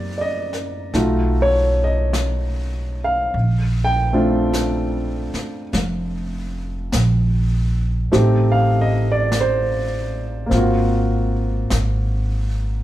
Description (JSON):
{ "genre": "jazz ballad", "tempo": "50 BPM", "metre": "4/4", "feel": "swing 66% on 8ths", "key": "unclear", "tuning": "A4 = 440 Hz", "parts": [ { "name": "warm grand piano", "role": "accompaniment", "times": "0.0-12.8 s", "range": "A3 to G5", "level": "-21 LUFS", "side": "right 1 dB", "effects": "none" }, { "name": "upright bass", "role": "bass", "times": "0.0-12.8 s", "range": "F1 to F#2", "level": "-20 LUFS", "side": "equal", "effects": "none" }, { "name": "jazz brush drum kit", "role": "drums", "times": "0.5-12.8 s", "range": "brushed snare drum, hi-hat, snare drum", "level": "-29 LUFS", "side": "left 2 dB", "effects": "none" } ], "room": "light reverb", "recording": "heard from further back in the room", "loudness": "-17 LUFS", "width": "side -14 dB against mid", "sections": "0.0-12.8 A section", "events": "none", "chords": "0.0 Cm7; 0.9 B7#11; 3.3 Bbmaj7; 8.1 Am7b5; 10.5 Ab13" }